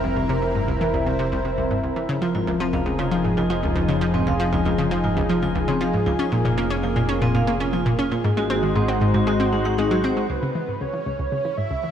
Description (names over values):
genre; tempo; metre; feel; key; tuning
ambient, sequencer-driven space music; 117 BPM; 4/4; straight; unclear; A4 = 440 Hz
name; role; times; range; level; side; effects
breathy flute-like synth lead; melody; 0.0-1.8, 10.3-11.9 s; Bb4 to E5; -29 LUFS; right 2 dB; ensemble chorus, tape echo
lush unison pad; sustained chords; 0.0-11.9 s; C#3 to C#5; -24 LUFS; left 1 dB; chorus
analog pluck; riff; 0.0-11.9 s; C2 to Eb4; -23 LUFS; equal; chorus, cassette tape, tape echo
fat analog bass; bass; 0.0-10.3 s; F1 to Ab1; -28 LUFS; equal; tube saturation
vibraphone with medium hard mallets; arpeggios; 2.2-10.2 s; C4 to Gb5; -28 LUFS; moving between left 3 dB and right 6 dB; auto-pan, tape echo
room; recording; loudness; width
wet lush hall reverb, RT60 3.1 s; none; -19 LUFS; side -9 dB against mid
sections
0.0-10.3 A section; 10.3-11.9 B section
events
filter sweep on synth arpeggio sound 10.3-11.9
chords
0.0 C7/F; 2.1 Dbadd9/F; 8.2 Ab7; 10.3 C#m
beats
| 0.04 0.55 1.06 1.58 | 2.09 2.60 3.12 3.63 | 4.14 4.66 5.17 5.68 | 6.19 6.71 7.22 7.73 | 8.24 8.76 9.27 9.78 | 10.30 10.81 11.32 11.83